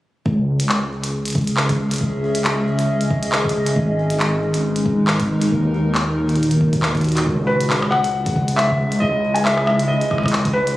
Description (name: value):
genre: IDM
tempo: 137 BPM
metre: 4/4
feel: swing 56% on 16ths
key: C# dorian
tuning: A4 = 440 Hz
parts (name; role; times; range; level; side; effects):
- warbly tape-like pad; sustained chords; 1.1-10.8 s; A#2 to E5; -23 LUFS; equal; chorus, built-in reverb, phaser, vintage 12-bit sampler grit
- dark detuned saw bass; bass; 0.3-10.7 s; G#1 to D#2; -20 LUFS; equal; none
- electronic kick drum; drums; 0.3-10.5 s; none; -24 LUFS; equal; studio reverb
- glitchy drum kit; drums; 0.6-10.7 s; handclaps, hi-hat, percussion blips; -23 LUFS; equal; studio reverb, digital delay
- felt-muted upright piano; melody; 7.5-10.8 s; B4 to G#5; -19 LUFS; equal; vintage 12-bit sampler grit, digital delay
room: moderate lush hall reverb, RT60 2.3 s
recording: recorded on a phone in the room, studio reverb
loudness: -16 LUFS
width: side -16 dB against mid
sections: 0.3-10.8 A section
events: none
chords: 0.3 C#madd9; 3.8 G#m; 5.5 D#m; 7.3 C#madd9